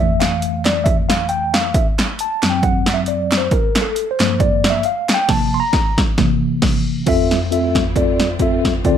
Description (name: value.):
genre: uptempo gospel.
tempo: 135 BPM.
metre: 4/4.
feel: swing 55% on 8ths.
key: F major.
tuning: A4 = 440 Hz.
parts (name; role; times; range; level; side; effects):
mellow tine electric piano; accompaniment; 0.0-9.0 s; D2 to C6; -17 LUFS; left 1 dB; medium stereo tremolo.
punchy analog drum machine; drums; 0.2-9.0 s; crash cymbal, hi-hat, kick drum, snare drum; -17 LUFS; equal; none.
group handclap; percussion; 0.2-5.2 s; none; -27 LUFS; right 3 dB; none.
warm studio string section; sustained chords; 7.1-9.0 s; A3 to F4; -30 LUFS; left 2 dB; none.
room: light reverb.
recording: none.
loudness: -14 LUFS.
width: side -9 dB against mid.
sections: 0.0-7.1 A section; 7.1-9.0 B section.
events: tine electric piano solo 0.0-7.1; band accent 5.3-7.1.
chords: 0.0 Fmaj7; 1.7 F#dim; 3.5 Gm7; 5.3 C7sus4; 6.2 C7; 7.1 Fmaj7.